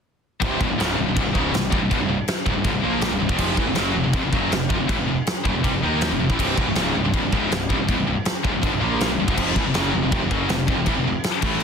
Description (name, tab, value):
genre	heavy metal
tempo	161 BPM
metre	4/4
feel	straight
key	unclear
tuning	A4 = 440 Hz
part	fuzz guitar	riff	0.4-11.6 s	C2 to Eb4	-28 LUFS	right 1 dB	distortion
part	heavy high-gain guitar	riff	0.4-11.6 s	C2 to Eb4	-26 LUFS	right 12 dB	distortion
part	scooped high-gain guitar	riff	0.4-11.6 s	C2 to Eb4	-25 LUFS	left 11 dB	distortion
part	fuzz picked electric bass	bass	0.4-11.6 s	C1 to Eb2	-28 LUFS	equal	overdrive
part	big rock drum kit	drums	0.4-11.6 s	china cymbal, crash cymbal, kick drum, snare drum	-24 LUFS	equal	none
room	light reverb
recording	dense, heavily limited modern master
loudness	-19 LUFS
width	side -6 dB against mid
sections	0.4-11.6 A section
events	none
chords	0.4 C; 3.4 F5; 6.4 C; 9.4 F5